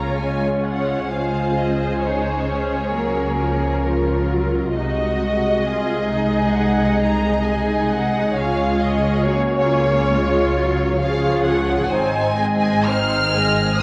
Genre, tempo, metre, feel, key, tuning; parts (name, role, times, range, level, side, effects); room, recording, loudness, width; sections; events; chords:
classical, slow romantic movement for string orchestra; 67 BPM; 4/4; rubato; Db major; A4 = 441 Hz
warm symphonic violin section; melody; 0.0-13.8 s; Db5 to F6; -27 LUFS; equal
warm symphonic violin section; second line; 0.0-13.8 s; F4 to Eb5; -26 LUFS; equal
clear symphonic viola section; accompaniment; 0.0-13.8 s; F3 to Ab4; -24 LUFS; equal
clear symphonic double bass section; bass; 0.0-13.8 s; Ab1 to Db2; -28 LUFS; equal
rich symphonic cello section; bass; 0.0-13.8 s; Ab2 to Db3; -28 LUFS; equal
wet scoring stage reverb, RT60 2.0 s; worn, warbling old tape, cassette tape, warbly pitch drift; -19 LUFS; mono
0.0-13.8 A section
0.0 Db; 1.1 Ebm7/Db; 4.7 Ab7/C; 8.3 Db; 11.9 Ab